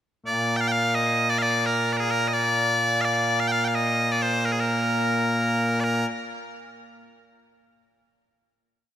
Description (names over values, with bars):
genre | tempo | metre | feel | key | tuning
scottish traditional, Scottish pipe music | 86 BPM (dotted quarters) | 6/8 | straight | Bb major | A4 = 440 Hz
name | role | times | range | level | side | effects
loud bright bagpipes | solo | 0.3-6.1 s | Bb2 to G5 | -21 LUFS | equal | slapback echo
room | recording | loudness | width
moderate lush hall reverb, RT60 2.8 s | rough home demo mix | -21 LUFS | side -10 dB against mid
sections
0.3-5.8 A section; 5.8-7.2 final note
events
none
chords
none